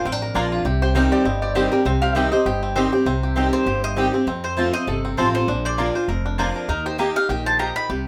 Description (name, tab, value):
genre	bluegrass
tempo	199 BPM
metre	4/4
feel	swing 56% on 8ths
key	C dorian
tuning	A4 = 441 Hz
part	lap resonator guitar	second line	0.0-2.6 s	Bb4 to G5	-28 LUFS	equal	none
part	picked steel-string acoustic guitar	accompaniment	0.0-8.1 s	F2 to G4	-25 LUFS	equal	none
part	bluegrass banjo	arpeggios	0.0-8.1 s	G3 to C5	-29 LUFS	equal	none
part	upright bass	bass	0.1-8.1 s	F1 to F2	-28 LUFS	equal	none
part	mandolin	stabs	0.4-7.7 s	Bb3 to Bb5	-27 LUFS	equal	none
part	mandolin	melody	3.5-7.9 s	Bb4 to B5	-27 LUFS	equal	none
room	moderate studio ambience, RT60 0.5 s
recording	none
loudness	-21 LUFS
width	mono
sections	0.0-3.1 A section; 3.1-8.1 B section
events	resonator guitar played with a steel bar solo 0.0-3.1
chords	0.0 Bb; 0.7 Cm; 4.3 F; 5.5 Bb; 6.7 Eb